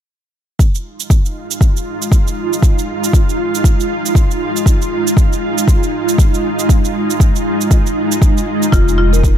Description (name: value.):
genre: afro house.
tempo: 118 BPM.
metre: 4/4.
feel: swing 58% on 16ths.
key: F minor.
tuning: A4 = 438 Hz.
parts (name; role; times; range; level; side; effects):
ethereal airy pad; sustained chords; 1.3-9.4 s; Ab3 to Ab4; -17 LUFS; right 1 dB; ensemble chorus, built-in reverb, tremolo, vintage 12-bit sampler grit, sidechain pumping.
electronic kick drum; drums; 0.6-9.4 s; none; -11 LUFS; equal; none.
shaker; drums; 0.6-9.4 s; none; -24 LUFS; right 10 dB; none.
marimba with medium mallets; arpeggios; 8.7-9.2 s; F4 to Bb4; -17 LUFS; left 6 dB; sidechain pumping, analog delay.
warm sub bass; bass; 8.7-9.4 s; F1; -14 LUFS; equal; sidechain pumping.
room: digital ambience.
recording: echo-heavy mix.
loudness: -12 LUFS.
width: side -10 dB against mid.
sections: 0.6-9.4 A section.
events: none.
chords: 0.6 Fm7.